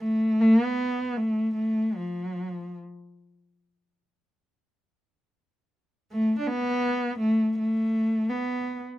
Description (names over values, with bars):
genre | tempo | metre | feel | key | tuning
japanese traditional, Japanese chamber music | free time | none | none | unclear | A4 = 441 Hz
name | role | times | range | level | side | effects
dark cello | solo | 0.0-8.8 s | F3 to D4 | -23 LUFS | equal | none
room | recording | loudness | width
light reverb | close, detailed microphones | -23 LUFS | side -15 dB against mid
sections
0.0-9.0 A section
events
none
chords
none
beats
free time